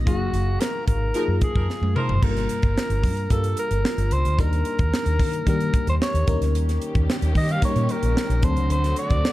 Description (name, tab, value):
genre	polished 1980s jazz-funk pop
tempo	111 BPM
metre	4/4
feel	straight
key	unclear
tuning	A4 = 440 Hz
part	FM electric piano	accompaniment	0.0-9.3 s	Gb3 to F5	-29 LUFS	left 3 dB	phaser, wide subtle chorus
part	vintage muted fingered electric bass	bass	0.0-9.2 s	Gb1 to Eb3	-23 LUFS	equal	none
part	growling alto saxophone	melody	0.1-9.3 s	Gb4 to F5	-28 LUFS	equal	none
part	crisp fusion drum kit	drums	0.1-9.3 s	crash cymbal, hi-hat, kick drum, snare drum, toms	-24 LUFS	equal	none
part	warm horn section	second line	1.1-2.1 s	F3 to Bb4	-32 LUFS	right 2 dB	none
part	dark studio string section	sustained chords	6.5-9.3 s	D3 to G4	-32 LUFS	equal	none
room	light reverb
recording	dark, warm production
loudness	-20 LUFS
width	side -16 dB against mid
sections	0.0-2.2 A section; 2.2-9.3 B section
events	band accent 0.1-2.2; drum fill 1.7-2.2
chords	0.1 Gbmaj13; 2.2 Gm7; 4.4 Ebmaj7; 6.3 Eb7; 8.4 D7